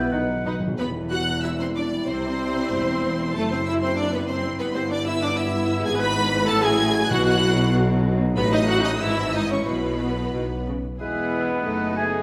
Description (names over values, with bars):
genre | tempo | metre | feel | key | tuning
quick classical-period movement for symphony orchestra | 94 BPM | 2/4 | rubato | E minor, E major from 5.9 s | A4 = 441 Hz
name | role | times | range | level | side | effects
bright large flute ensemble | second line | 0.0-0.4, 11.0-12.0 s | G#4 to E5 | -40 LUFS | equal | none
clear chamber violin section | second line | 0.0-12.2 s | D#4 to B5 | -33 LUFS | equal | none
clear oboe | second line | 0.0-0.5, 11.0-12.1 s | B4 to G#5 | -31 LUFS | equal | none
warm clarinet | second line | 0.0-0.5, 11.0-12.2 s | B3 to E5 | -34 LUFS | equal | none
mellow bassoon | accompaniment | 0.0-0.5, 11.0-12.2 s | G#3 to E4 | -34 LUFS | equal | none
mellow French horn section | sustained chords | 0.0-12.2 s | E3 to E4 | -31 LUFS | equal | none
rich chamber double bass section | bass | 0.1-12.2 s | E1 to C2 | -30 LUFS | equal | none
warm chamber cello section | bass | 0.1-12.2 s | E2 to D#3 | -31 LUFS | equal | none
timpani | percussion | 0.1-0.7, 7.1-8.0 s | B2 | -34 LUFS | equal | none
clear symphonic violin section | melody | 0.5-12.2 s | G#4 to B6 | -32 LUFS | equal | none
rich symphonic viola section | accompaniment | 0.5-12.2 s | A3 to B4 | -29 LUFS | equal | none
clear trumpet | stabs | 11.0-12.2 s | B3 to G#4 | -30 LUFS | equal | none
room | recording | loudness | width
wet scoring stage reverb, RT60 1.7 s | none | -23 LUFS | mono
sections
0.8-11.0 A section; 11.0-12.2 B section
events
timpani fill 0.1-0.8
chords
0.1 B; 0.8 Em; 2.1 C; 3.4 D9/F#; 4.6 Em/G; 5.9 E/G#; 6.5 F#m7/A; 7.1 B; 8.4 B7/A; 9.0 E/G#; 9.7 Bsus4; 10.3 B; 11.0 E; 11.6 B7/F#